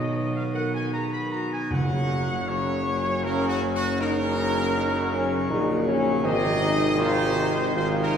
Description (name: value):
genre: classical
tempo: 79 BPM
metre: 3/4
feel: straight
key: F# major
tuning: A4 = 436 Hz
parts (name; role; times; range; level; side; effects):
- warm trumpet section; melody; 0.0-8.2 s; F#4 to B5; -28 LUFS; right 1 dB; none
- bright trombone section; sustained chords; 0.0-8.2 s; B2 to F#3; -31 LUFS; right 1 dB; none
- dark French horn section; sustained chords; 0.0-8.2 s; B#3 to B4; -29 LUFS; left 2 dB; none
- pipe organ, full organ; sustained chords; 0.0-8.2 s; C#3 to C#5; -31 LUFS; left 1 dB; none
- warm tuba; bass; 0.0-8.2 s; F#1 to B1; -27 LUFS; equal; none
- timpani; percussion; 1.7-2.8 s; F#2; -30 LUFS; right 1 dB; none
room: wet church reverb, RT60 3.4 s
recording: recorded in a church or concert hall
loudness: -22 LUFS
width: side -7 dB against mid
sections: 0.0-8.2 A section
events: none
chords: 0.0 B; 1.7 F#; 6.2 G#